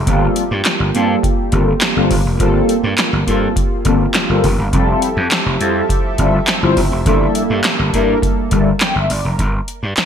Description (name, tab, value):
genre	early-eighties boogie funk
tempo	103 BPM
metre	4/4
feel	straight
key	G dorian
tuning	A4 = 440 Hz
part	chorused pulse-width pad	sustained chords	0.0-9.4 s	F3 to E5	-22 LUFS	right 3 dB	none
part	gritty slap bass	bass	0.0-10.0 s	F1 to G2	-18 LUFS	equal	overdrive
part	mellow synth brass	accompaniment	0.1-9.5 s	G3 to G5	-18 LUFS	left 2 dB	chorus, phaser
part	electro analog drum machine	drums	0.1-10.1 s	handclaps, hi-hat, kick drum, snare drum	-17 LUFS	equal	gated reverb
room	light reverb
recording	bright 1980s-style digital production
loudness	-13 LUFS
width	side -8 dB against mid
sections	0.0-9.4 A section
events	none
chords	0.1 Gm11; 4.7 Fmaj9; 7.1 Gm69; 9.4 Gm